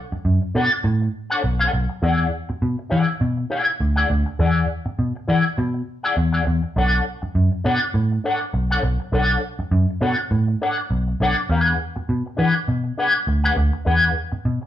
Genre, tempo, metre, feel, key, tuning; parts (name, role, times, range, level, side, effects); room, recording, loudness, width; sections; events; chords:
funk; 101 BPM; 4/4; swing 56% on 16ths; B dorian; A4 = 440 Hz
electric guitar with an envelope filter; accompaniment; 0.1-14.7 s; D4 to F#5; -21 LUFS; left 1 dB; wah
vintage muted picked electric bass; bass; 0.1-14.6 s; B1 to E3; -20 LUFS; equal
moderate large studio reverb, RT60 0.8 s; band playing live in one room; -18 LUFS; side -12 dB against mid
0.0-14.7 A section
0.0 Bm9; 2.0 E9; 6.8 Bm9; 11.5 E9